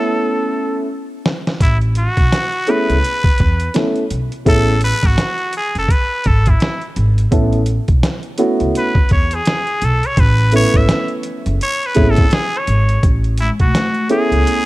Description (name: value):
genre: hip hop, jazz-hop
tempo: 84 BPM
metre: 4/4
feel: swing 60% on 16ths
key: A major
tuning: A4 = 440 Hz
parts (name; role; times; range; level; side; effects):
- trumpet with straight mute; melody; 0.0-14.7 s; E4 to E5; -19 LUFS; equal; none
- vibraphone with soft mallets; second line; 0.0-0.9, 13.4-14.7 s; G#3 to C#4; -24 LUFS; left 2 dB; analog delay
- dark grand piano; accompaniment; 0.0-14.7 s; A3 to B4; -18 LUFS; right 1 dB; none
- boom bap sampler-style drum kit; drums; 1.3-14.7 s; hi-hat, kick drum, snare drum; -16 LUFS; equal; none
- upright bass; bass; 1.6-14.4 s; F#1 to E2; -16 LUFS; equal; none
room: light reverb, studio ambience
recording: dark, warm production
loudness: -13 LUFS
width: side -18 dB against mid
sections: 0.0-1.6 A section; 1.6-13.0 B section; 13.0-14.7 C section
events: break 0.0-1.6; drum fill 0.2-1.6; muted trumpet solo 1.6-13.0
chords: 0.0 Aadd9; 1.6 Amaj9